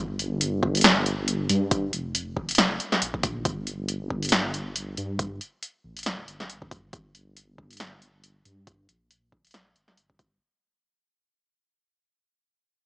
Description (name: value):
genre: deep dubstep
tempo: 138 BPM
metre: 4/4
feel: swing 56% on 16ths, half-time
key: G minor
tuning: A4 = 441 Hz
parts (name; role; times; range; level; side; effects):
- dark detuned saw bass; bass; 0.0-10.4 s; F1 to G2; -29 LUFS; equal; none
- deep house drum kit; drums; 0.2-10.3 s; hi-hat, snare drum; -22 LUFS; equal; overdrive
- electronic kick drum; drums; 0.6-10.3 s; none; -30 LUFS; equal; overdrive
room: light reverb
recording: dry, gritty hardware recording, small speaker sound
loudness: -23 LUFS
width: side -33 dB against mid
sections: 0.0-10.4 A section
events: fade-out 0.0-10.4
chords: none